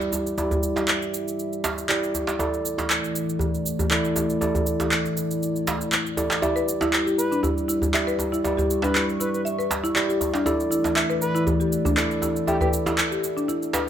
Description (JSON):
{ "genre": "afro house", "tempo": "119 BPM", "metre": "4/4", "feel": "swing 54% on 16ths", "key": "E dorian", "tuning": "A4 = 439 Hz", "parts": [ { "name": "dark analog pad", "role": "sustained chords", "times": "0.0-13.9 s", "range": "E3 to C#6", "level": "-29 LUFS", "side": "left 2 dB", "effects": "chorus" }, { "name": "tine electric piano", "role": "stabs", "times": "0.0-13.9 s", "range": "E4 to D5", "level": "-27 LUFS", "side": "right 3 dB", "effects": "auto-pan, low-pass filter, dub echo" }, { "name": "electronic cabasa and handclaps", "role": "drums", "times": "0.0-13.8 s", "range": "none", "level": "-26 LUFS", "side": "equal", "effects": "none" }, { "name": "djembe", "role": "percussion", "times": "0.1-13.8 s", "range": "none", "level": "-28 LUFS", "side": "right 1 dB", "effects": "none" }, { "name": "buzzing marimba with hard mallets", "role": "arpeggios", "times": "6.4-13.8 s", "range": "D4 to E5", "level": "-26 LUFS", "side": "left 2 dB", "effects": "dub echo" }, { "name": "expressive portamento lead", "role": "melody", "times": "7.2-12.7 s", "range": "G4 to B4", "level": "-31 LUFS", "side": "equal", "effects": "chorus, dub echo" } ], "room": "moderate plate reverb, RT60 1.2 s, digital ambience", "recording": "none", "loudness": "-21 LUFS", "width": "side -10 dB against mid", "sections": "0.0-13.9 A section", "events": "filter sweep on tine electric piano 0.0-13.9", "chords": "0.0 Em7; 2.4 Dsus2/E; 6.4 Em7; 10.5 Dsus2/E" }